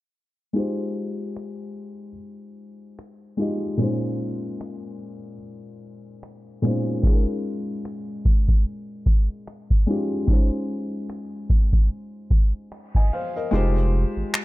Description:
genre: contemporary R&B.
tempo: 74 BPM.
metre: 4/4.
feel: swing 58% on 16ths.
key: F minor.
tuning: A4 = 440 Hz.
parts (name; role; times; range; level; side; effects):
felt-muted upright piano; accompaniment; 0.5-14.4 s; Bb2 to Ab5; -27 LUFS; left 1 dB; none.
booming analog drum machine; drums; 1.4-14.4 s; finger snaps, kick drum; -18 LUFS; equal; none.
saturated sub bass; bass; 13.5-14.2 s; F1 to Ab1; -20 LUFS; equal; none.
room: little or no reverb.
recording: low-pass filter.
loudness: -21 LUFS.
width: side -19 dB against mid.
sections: 0.5-13.5 A section.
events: filter sweep 0.5-13.5; kick muted 13.5-14.4.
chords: 0.5 Fm7; 3.8 Bbm11; 7.0 Eb7sus4; 10.3 Dbmaj9; 13.5 Fm7.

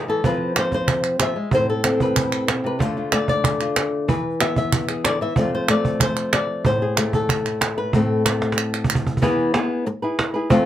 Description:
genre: flamenco.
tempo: 187 BPM.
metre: 4/4.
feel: straight.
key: A harmonic minor.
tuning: A4 = 436 Hz.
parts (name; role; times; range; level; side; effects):
flamenco guitar; melody; 0.0-10.7 s; A2 to E5; -20 LUFS; left 1 dB; none.
cajon; percussion; 0.2-10.7 s; none; -23 LUFS; right 2 dB; none.
palmas hand claps; percussion; 0.6-9.1 s; none; -24 LUFS; right 5 dB; none.
room: moderate small room reverb, RT60 0.5 s.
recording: none.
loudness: -18 LUFS.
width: side -11 dB against mid.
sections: 0.0-9.2 A section; 9.2-10.7 B section.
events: drum fill 8.4-9.2.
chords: 0.2 F5; 1.5 Am; 2.8 Dm; 4.1 E; 5.4 F; 6.7 Am; 9.2 E.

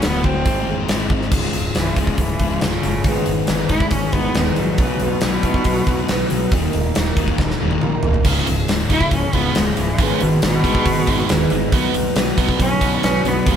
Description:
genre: quiet-loud alternative rock.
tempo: 138 BPM.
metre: 4/4.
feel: straight.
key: Db mixolydian.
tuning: A4 = 442 Hz.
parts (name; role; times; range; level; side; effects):
rich cello; melody; 0.0-13.6 s; Cb3 to Fb4; -23 LUFS; equal; none.
fingerpicked steel-string acoustic guitar; arpeggios; 0.0-13.6 s; Db2 to Cb5; -25 LUFS; right 4 dB; none.
thick fuzz guitar; riff; 0.0-13.6 s; Db2 to Ab4; -23 LUFS; left 9 dB; distortion.
growling picked electric bass; bass; 0.0-13.6 s; Db1 to Cb2; -25 LUFS; right 1 dB; overdrive.
huge arena drum kit; drums; 0.0-13.6 s; crash cymbal, hi-hat, kick drum, snare drum, toms; -20 LUFS; equal; none.
distorted electric guitar; riff; 8.2-13.6 s; Db2 to Cb4; -23 LUFS; right 8 dB; overdrive.
room: moderate stone room reverb, RT60 1.0 s.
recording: band playing live in one room.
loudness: -16 LUFS.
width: side -8 dB against mid.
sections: 0.0-1.3 A section; 1.3-13.6 B section.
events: cello solo 1.3-13.6; drum fill 7.4-8.3.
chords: 0.5 Ab; 1.3 Db; 3.1 Abm; 4.8 Cb; 6.5 Eb; 8.3 Db; 10.0 Abm; 11.7 Cb.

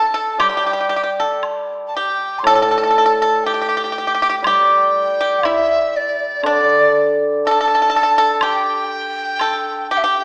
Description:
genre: chinese traditional, Chinese chamber ensemble.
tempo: 60 BPM.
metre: 4/4.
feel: rubato.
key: unclear.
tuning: A4 = 439 Hz.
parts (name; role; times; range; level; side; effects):
breathy mellow large dizi; melody; 0.0-10.2 s; D5 to C6; -21 LUFS; equal; none.
pipa; second line; 0.0-10.2 s; D4 to A4; -20 LUFS; equal; none.
hammered dulcimer; accompaniment; 0.0-9.4 s; A2 to D5; -22 LUFS; equal; none.
woodblock; percussion; 0.4-9.6 s; none; -29 LUFS; equal; none.
room: wet recital hall reverb, RT60 1.7 s.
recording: small speaker sound.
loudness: -17 LUFS.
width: mono.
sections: 0.4-10.2 A section.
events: none.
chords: none.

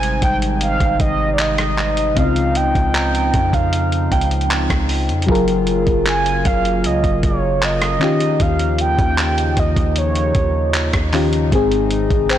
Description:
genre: contemporary R&B.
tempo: 77 BPM.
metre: 4/4.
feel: straight.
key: Ab major.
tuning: A4 = 436 Hz.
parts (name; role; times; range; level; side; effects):
mellow horn-like synth lead; melody; 0.0-12.4 s; Db5 to Ab5; -21 LUFS; right 2 dB; chorus, ping-pong delay.
mellow FM electric piano; accompaniment; 0.0-12.4 s; Ab2 to Eb5; -21 LUFS; left 4 dB; chorus.
chorused pulse-width pad; sustained chords; 0.0-12.4 s; C3 to F4; -25 LUFS; equal; sidechain pumping.
long sustained 808-style bass; bass; 0.0-12.4 s; Gb1 to F2; -21 LUFS; right 1 dB; none.
dusty soul sampler-style drum kit; drums; 0.0-12.4 s; handclaps, hi-hat, kick drum, rim click; -20 LUFS; equal; soft clipping on snare.
soft synth bell; texture; 0.2-12.4 s; C5 to Bb5; -28 LUFS; right 3 dB; chorus, ping-pong delay.
room: light reverb.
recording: blown-out, overdriven recording, overdrive.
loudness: -14 LUFS.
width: side -11 dB against mid.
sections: 0.0-12.4 A section.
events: none.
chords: 0.0 Abmaj7; 2.2 Dbmaj9; 5.3 Gbmaj9; 8.0 Eb9; 11.5 Ab.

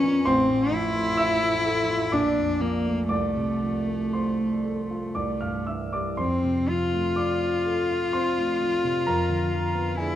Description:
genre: classical, romantic duo for cello and grand piano.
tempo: 56-67 BPM.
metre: 3/4.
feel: rubato.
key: F major.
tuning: A4 = 442 Hz.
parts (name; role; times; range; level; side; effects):
rich cello; melody; 0.0-10.2 s; A3 to F4; -24 LUFS; left 2 dB; none.
dark baby grand piano; accompaniment; 0.0-10.2 s; A1 to F6; -26 LUFS; right 2 dB; none.
room: moderate recital hall reverb, RT60 1.8 s.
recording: dark, warm production.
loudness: -22 LUFS.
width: side -11 dB against mid.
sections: 0.0-10.2 A section.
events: none.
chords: 0.3 F/A; 2.1 Bbmaj7; 3.1 F/C; 5.2 C; 6.2 F; 9.1 Fdim7.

